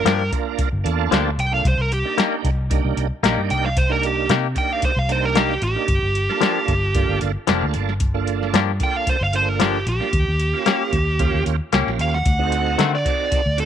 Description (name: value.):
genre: straight-eighth soul blues.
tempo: 113 BPM.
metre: 4/4.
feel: straight.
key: G minor.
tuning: A4 = 436 Hz.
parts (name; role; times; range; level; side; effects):
smooth overdriven lead guitar; melody; 0.0-13.7 s; G4 to G5; -22 LUFS; right 2 dB; none.
bright tonewheel organ; accompaniment; 0.0-13.7 s; Bb3 to Bb4; -26 LUFS; right 15 dB; overdrive, chorus vibrato, slow rotary speaker.
vintage muted fingered electric bass; bass; 0.0-13.7 s; F1 to D3; -22 LUFS; equal; none.
direct-recorded clean electric guitar; stabs; 0.1-13.0 s; Eb3 to G4; -23 LUFS; left 14 dB; none.
soft vintage rhythm box; drums; 0.1-13.7 s; hi-hat, kick drum, snare drum; -22 LUFS; equal; none.
room: light reverb, digital ambience.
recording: 1960s-style stereo with parts hard left and right.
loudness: -17 LUFS.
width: side -9 dB against mid.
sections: 0.0-13.7 A section.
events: none.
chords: 0.0 Gm7; 1.6 Cm7; 5.9 Gm7; 10.1 Eb7; 12.3 D7b9.